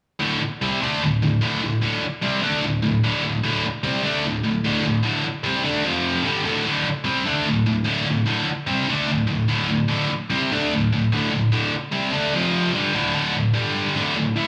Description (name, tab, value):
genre	rock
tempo	148 BPM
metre	4/4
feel	straight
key	unclear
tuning	A4 = 443 Hz
part	scooped high-gain guitar	solo	0.2-14.5 s	D2 to D4	-22 LUFS	equal	distortion, analog delay
room	light reverb, digital ambience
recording	studio reverb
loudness	-22 LUFS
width	mono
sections	0.2-13.1 A section; 13.1-14.5 B section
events	none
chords	0.2 D5; 5.9 F5; 6.3 D5; 12.3 F5; 12.7 D5; 13.6 G5; 14.0 D5